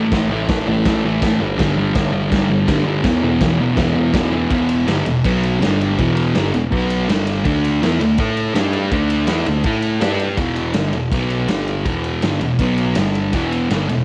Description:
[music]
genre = garage rock duo or trio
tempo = 164 BPM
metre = 4/4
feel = straight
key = E minor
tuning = A4 = 441 Hz
[part]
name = thick fuzz guitar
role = riff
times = 0.0-14.0 s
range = E2 to A4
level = -19 LUFS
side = equal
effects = distortion, cassette tape
[part]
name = overdriven picked electric bass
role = bass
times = 0.0-14.0 s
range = E1 to A2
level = -30 LUFS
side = equal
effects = none
[part]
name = raw garage drum kit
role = drums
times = 0.1-14.0 s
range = crash cymbal, kick drum, ride cymbal, snare drum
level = -24 LUFS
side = equal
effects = cassette tape
[sound]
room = little or no reverb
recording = home recording on cassette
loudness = -18 LUFS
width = mono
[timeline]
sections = 0.0-4.5 A section; 4.5-10.4 B section; 10.4-14.0 C section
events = none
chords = 0.0 A5; 1.4 G5; 3.1 E5; 4.5 Em; 5.3 B5; 5.6 G5; 6.0 Em; 6.7 B5; 7.1 G5; 7.5 D5; 8.2 A5; 8.6 G5; 8.9 D5; 9.7 A5; 10.0 G5; 10.4 Em; 11.1 B5; 11.5 G5; 11.9 Em; 12.6 B5; 13.0 G5; 13.3 Em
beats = | 0.12 0.48 0.85 1.22 | 1.58 1.95 2.32 2.69 | 3.05 3.42 3.79 4.15 | 4.52 4.88 5.25 5.62 | 5.98 6.35 6.72 7.08 | 7.45 7.82 8.18 8.55 | 8.92 9.28 9.65 10.02 | 10.39 10.75 11.12 11.49 | 11.86 12.23 12.60 12.96 | 13.33 13.70

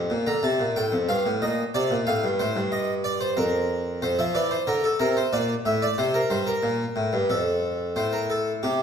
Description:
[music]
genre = classical, baroque-style two-part invention for harpsichord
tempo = 91 BPM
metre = 3/4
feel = straight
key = Bb major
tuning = A4 = 439 Hz
[part]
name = harpsichord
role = solo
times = 0.0-8.8 s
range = F2 to Bb5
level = -22 LUFS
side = equal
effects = none
[sound]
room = wet recital hall reverb, RT60 1.3 s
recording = recorded in a church or concert hall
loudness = -22 LUFS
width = side -7 dB against mid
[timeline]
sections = 0.1-8.0 A section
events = none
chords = 0.1 Bb; 1.4 Eb5/Bb; 2.1 F7; 3.4 Bb5/F; 4.0 F; 5.3 Bb; 6.0 C5; 7.3 F; 8.0 F/A (rootless)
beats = | 0.10 0.76 1.42 | 2.07 2.73 3.38 | 4.03 4.68 5.33 | 5.98 6.64 7.30 | 7.97 8.63

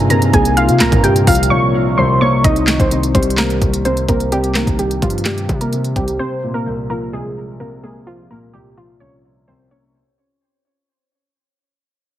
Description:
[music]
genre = hip hop, trap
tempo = 128 BPM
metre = 4/4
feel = half-time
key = unclear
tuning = A4 = 440 Hz
[part]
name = warbly dusty pluck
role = melody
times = 0.0-9.9 s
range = F3 to Db6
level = -18 LUFS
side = right 1 dB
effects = chorus, digital delay
[part]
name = dark grand piano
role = accompaniment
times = 0.0-10.0 s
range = C2 to C4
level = -19 LUFS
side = left 1 dB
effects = none
[part]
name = ethereal airy pad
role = sustained chords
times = 0.0-2.4 s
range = C3 to F4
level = -24 LUFS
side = left 1 dB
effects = ensemble chorus, built-in reverb
[part]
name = hard-hitting 808-style bass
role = bass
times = 0.0-6.2 s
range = C2 to C3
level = -19 LUFS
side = equal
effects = none
[part]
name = trap drum kit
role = drums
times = 0.1-6.2 s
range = handclaps, hi-hat, kick drum, snare drum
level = -17 LUFS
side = equal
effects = overdrive
[sound]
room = light reverb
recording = heavily compressed radio sound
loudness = -13 LUFS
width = side -12 dB against mid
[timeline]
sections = 0.0-2.4 A section; 2.4-9.9 B section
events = drums muted 1.5-2.4; fade-out 2.4-9.9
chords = 0.0 Db6/C; 2.4 Cm7; 6.2 Db6/C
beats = 0.10 | 0.57 1.04 1.51 1.98 | 2.44 2.91 3.38 3.85 | 4.32 4.79 5.26 5.73 | 6.19 6.66 7.13 7.60 | 8.07 8.54 9.01 9.48

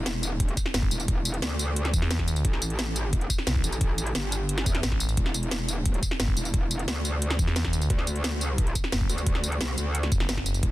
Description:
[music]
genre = dark technical drum and bass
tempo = 176 BPM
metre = 4/4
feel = straight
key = unclear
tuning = A4 = 439 Hz
[part]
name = metallic wobble bass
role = bass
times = 0.0-10.7 s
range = E1 to E2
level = -28 LUFS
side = equal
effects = chorus, overdrive
[part]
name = drum and bass drum kit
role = drums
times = 0.1-10.7 s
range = hi-hat, snare drum, tambourine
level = -30 LUFS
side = equal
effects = none
[part]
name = electronic kick drum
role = drums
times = 0.4-10.7 s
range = none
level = -26 LUFS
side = equal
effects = none
[part]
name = growling FM bass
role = bass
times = 0.7-10.6 s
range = F#1 to E2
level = -26 LUFS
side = equal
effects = none
[sound]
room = little or no reverb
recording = dense, heavily limited modern master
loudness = -24 LUFS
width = side -16 dB against mid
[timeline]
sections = 0.0-10.7 A section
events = none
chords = 0.0 N.C.; 7.9 D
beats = 0.06 0.40 0.74 | 1.08 1.42 1.76 2.11 | 2.45 2.79 3.13 3.47 | 3.81 4.15 4.49 4.83 | 5.17 5.51 5.86 6.20 | 6.54 6.88 7.22 7.56 | 7.90 8.24 8.58 8.92 | 9.27 9.61 9.95 10.29 | 10.63

